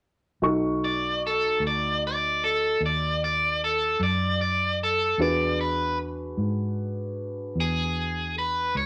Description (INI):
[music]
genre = blues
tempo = 50 BPM (dotted quarters)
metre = 12/8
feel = straight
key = unclear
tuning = A4 = 440 Hz
[part]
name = warm upright piano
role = accompaniment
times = 0.4-8.9 s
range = D4 to C#6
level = -32 LUFS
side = equal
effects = none
[part]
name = vintage muted fingered electric bass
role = bass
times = 0.4-8.9 s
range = B1 to G#2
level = -33 LUFS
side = equal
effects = none
[part]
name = biting overdriven guitar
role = melody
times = 0.8-8.9 s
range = G#4 to D5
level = -27 LUFS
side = equal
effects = none
[sound]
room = moderate studio reverb, RT60 0.7 s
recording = none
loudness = -26 LUFS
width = mono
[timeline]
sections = 0.4-8.9 A section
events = none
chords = 0.4 B7; 5.2 E7